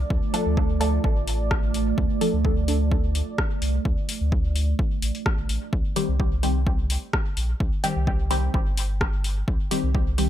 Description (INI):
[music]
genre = dub techno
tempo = 128 BPM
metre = 4/4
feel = swing 53% on 16ths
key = C dorian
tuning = A4 = 440 Hz
[part]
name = deep dark ambient pad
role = sustained chords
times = 0.0-5.7 s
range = A3 to D5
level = -30 LUFS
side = right 6 dB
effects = chorus, built-in reverb, sidechain pumping
[part]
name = pure sine sub bass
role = bass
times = 0.0-10.3 s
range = G1 to D2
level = -24 LUFS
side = equal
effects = sidechain pumping
[part]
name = electronic kick drum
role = drums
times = 0.1-10.0 s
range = none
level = -24 LUFS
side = equal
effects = overdrive
[part]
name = filtered dub chord stab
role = stabs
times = 0.3-2.9, 6.0-10.3 s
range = Eb3 to A4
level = -28 LUFS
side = left 1 dB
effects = phaser, sidechain pumping, dub echo
[part]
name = punchy analog drum machine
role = drums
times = 0.3-10.3 s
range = hi-hat, rim click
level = -30 LUFS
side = left 2 dB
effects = overdrive
[sound]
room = little or no reverb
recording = none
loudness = -21 LUFS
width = side -11 dB against mid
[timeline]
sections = 0.0-5.7 A section; 5.7-10.3 A section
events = none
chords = 0.0 Dm; 5.7 Cm